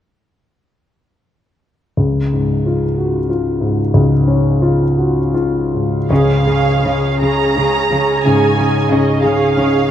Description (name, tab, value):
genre	classical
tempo	50-63 BPM (dotted quarters)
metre	12/8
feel	rubato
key	Db major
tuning	A4 = 440 Hz
part	clear grand piano	melody	2.0-9.9 s	Db2 to Ab4	-14 LUFS	left 1 dB	none
part	dark symphonic violin section	melody	6.1-9.9 s	Eb5 to Bb5	-19 LUFS	right 4 dB	none
part	warm symphonic viola section	accompaniment	6.1-9.9 s	Db4 to Ab4	-19 LUFS	right 2 dB	none
part	rich symphonic cello section	bass	6.1-9.9 s	Db3	-22 LUFS	equal	none
room	wet cathedral reverb, RT60 6.6 s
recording	in a vast, echoing space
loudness	-12 LUFS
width	side -10 dB against mid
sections	2.0-6.1 A section; 6.1-9.9 B section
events	none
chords	2.0 Db